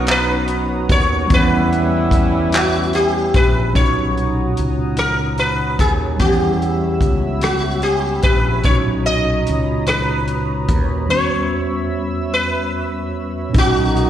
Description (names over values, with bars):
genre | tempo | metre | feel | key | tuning
slow six-eight R&B | 49 BPM (dotted quarters) | 6/8 | straight | B major | A4 = 440 Hz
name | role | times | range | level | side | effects
sitar | melody | 0.0-14.1 s | F#4 to D#5 | -19 LUFS | left 1 dB | slapback echo
mellow tine electric piano | accompaniment | 0.0-14.1 s | E2 to F#5 | -22 LUFS | right 1 dB | medium stereo tremolo, slapback echo
chorused pulse-width pad | sustained chords | 0.0-14.1 s | C#5 to E6 | -30 LUFS | equal | none
warm horn section | stabs | 0.0-3.3, 13.6-14.1 s | A#2 to F#4 | -23 LUFS | equal | slapback echo
mellow fretless electric bass | bass | 0.0-14.1 s | A#1 to E2 | -20 LUFS | equal | none
warm soul drum kit | drums | 0.1-14.1 s | handclaps, hi-hat, kick drum, rim click | -18 LUFS | equal | none
room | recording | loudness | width
light reverb | live gig heard through the venue's PA, recital hall reverb | -15 LUFS | side -10 dB against mid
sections
0.0-3.8 A section; 3.8-13.5 B section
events
break 11.1-13.5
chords
0.0 Bmaj9; 1.3 Em6; 3.8 Bmaj9; 6.2 Em6; 8.7 Bmaj9; 11.1 Em6; 13.5 Bmaj9